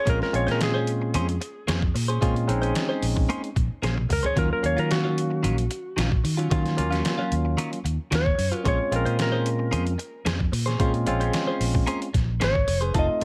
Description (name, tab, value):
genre	straight-eighth soul blues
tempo	112 BPM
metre	4/4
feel	straight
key	Bb minor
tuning	A4 = 441 Hz
part	clean lap steel guitar	melody	0.0-13.2 s	Gb4 to Eb5	-30 LUFS	equal	plate reverb
part	direct-recorded clean electric guitar	stabs	0.0-13.2 s	Eb3 to C5	-33 LUFS	equal	phaser, plate reverb
part	barky tine electric piano	accompaniment	0.1-13.2 s	Gb3 to F5	-31 LUFS	equal	plate reverb
part	fingered electric bass	bass	0.1-13.2 s	F1 to Eb3	-28 LUFS	equal	none
part	trip hop sampler-style drum kit	drums	0.1-13.2 s	hi-hat, kick drum, snare drum, toms	-30 LUFS	equal	none
room	light reverb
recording	none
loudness	-24 LUFS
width	mono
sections	0.0-13.2 A section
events	drum fill 3.8-4.4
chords	0.0 Bbm9; 4.4 Ebm9; 8.7 Bbm9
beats	| 0.07 0.61 1.15 1.68 | 2.22 2.75 3.29 3.83 | 4.36 4.90 5.44 5.97 | 6.51 7.04 7.58 8.12 | 8.65 9.19 9.73 10.26 | 10.80 11.34 11.87 12.41 | 12.94